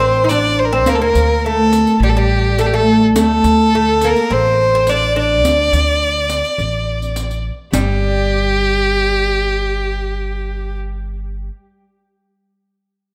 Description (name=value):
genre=Arabic maqam ensemble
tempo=105 BPM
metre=4/4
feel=straight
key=D maqam hijaz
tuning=A4 = 440 Hz
part: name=rich violin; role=melody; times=0.0-10.8 s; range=G4 to D5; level=-19 LUFS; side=equal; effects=none
part: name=oud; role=second line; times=0.0-11.5 s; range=G3 to Eb4+25c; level=-19 LUFS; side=equal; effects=none
part: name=upright bass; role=bass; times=0.0-11.5 s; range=G1 to D2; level=-22 LUFS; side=equal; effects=none
part: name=riq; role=percussion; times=0.3-8.0 s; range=none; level=-26 LUFS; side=equal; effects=none
room=moderate plate reverb, RT60 2.6 s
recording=dreamy mix soaked in reverb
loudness=-15 LUFS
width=mono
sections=0.0-7.7 A section; 7.7-10.0 B section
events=none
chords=none